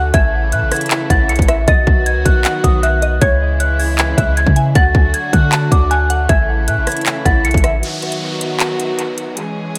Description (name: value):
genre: hip hop, trap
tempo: 156 BPM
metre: 4/4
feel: half-time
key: unclear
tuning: A4 = 440 Hz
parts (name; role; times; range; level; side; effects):
- celesta; melody; 0.0-7.8 s; D6 to C#7; -22 LUFS; equal; low-pass filter, dub echo
- glassy wavetable pluck; second line; 0.0-7.8 s; C#5 to A5; -25 LUFS; equal; chorus, dub echo
- warm chamber string section; sustained chords; 0.0-9.8 s; C#3 to G#4; -24 LUFS; equal; none
- clean 808-style bass; bass; 0.0-7.8 s; A1 to D3; -19 LUFS; equal; none
- trap drum kit; drums; 0.1-9.8 s; handclaps, hi-hat, kick drum, rim click; -18 LUFS; equal; none
- downlifter; sound effects; 7.8-9.8 s; none; -29 LUFS; equal; none
room: digital ambience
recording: echo-heavy mix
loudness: -15 LUFS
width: mono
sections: 0.0-7.8 A section; 7.8-9.8 B section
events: break 7.8-9.8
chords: 0.1 A; 1.7 B; 3.2 C#m; 4.8 D; 6.3 A; 7.8 B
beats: | 0.14 0.52 0.91 1.29 | 1.68 2.06 2.45 2.83 | 3.22 3.60 3.98 4.37 | 4.75 5.14 5.52 5.91 | 6.29 6.68 7.06 7.45 | 7.83 8.22 8.60 8.98 | 9.37 9.75